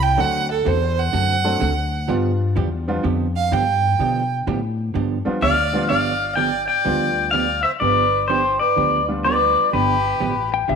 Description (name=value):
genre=country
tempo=126 BPM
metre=4/4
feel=swing 66% on 8ths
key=G mixolydian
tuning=A4 = 444 Hz
part: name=rich fiddle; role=second line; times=0.0-10.5 s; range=G4 to G5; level=-23 LUFS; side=right 7 dB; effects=none
part: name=upright bass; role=bass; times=0.0-10.8 s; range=G1 to B2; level=-24 LUFS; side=left 2 dB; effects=none
part: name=bright upright piano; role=accompaniment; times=0.2-9.7 s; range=F3 to A4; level=-26 LUFS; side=equal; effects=none
part: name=vintage hollow-body jazz guitar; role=accompaniment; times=0.2-10.8 s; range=D3 to A4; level=-26 LUFS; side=right 9 dB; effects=none
part: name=pedal steel guitar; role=melody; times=5.4-10.5 s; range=B4 to G5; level=-18 LUFS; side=left 5 dB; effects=slapback echo
part: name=clean lap steel guitar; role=second line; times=10.5-10.8 s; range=E5 to G5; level=-19 LUFS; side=left 12 dB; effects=none
room=moderate echo chamber reverb, RT60 1.9 s, small room ambience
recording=1960s-style stereo with parts hard left and right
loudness=-17 LUFS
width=side -6 dB against mid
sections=0.0-5.9 A section; 5.9-10.8 B section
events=fiddle solo 0.0-5.9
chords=0.2 D7; 2.1 G7